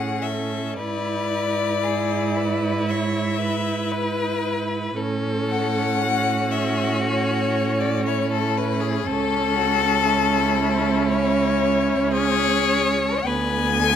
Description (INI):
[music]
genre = classical, slow romantic movement for string quartet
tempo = 58 BPM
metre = 4/4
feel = uneven beats, rubato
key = A major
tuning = A4 = 438 Hz
[part]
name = clear violin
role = melody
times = 0.0-14.0 s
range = G#4 to G#5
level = -24 LUFS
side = left 8 dB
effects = none
[part]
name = clear violin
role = second line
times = 0.0-14.0 s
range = E4 to C#5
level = -28 LUFS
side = left 2 dB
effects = none
[part]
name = warm viola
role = accompaniment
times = 0.0-14.0 s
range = B3 to E4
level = -25 LUFS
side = right 3 dB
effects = none
[part]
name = rich cello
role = bass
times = 0.0-14.0 s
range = C#2 to A2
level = -26 LUFS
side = right 5 dB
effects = none
[sound]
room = moderate recital hall reverb, RT60 1.3 s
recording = none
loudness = -19 LUFS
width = side -9 dB against mid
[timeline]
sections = 0.0-14.0 A section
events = none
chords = 0.0 A; 0.8 E7/G#; 5.0 A; 9.1 A/C#; 13.3 Bm7/D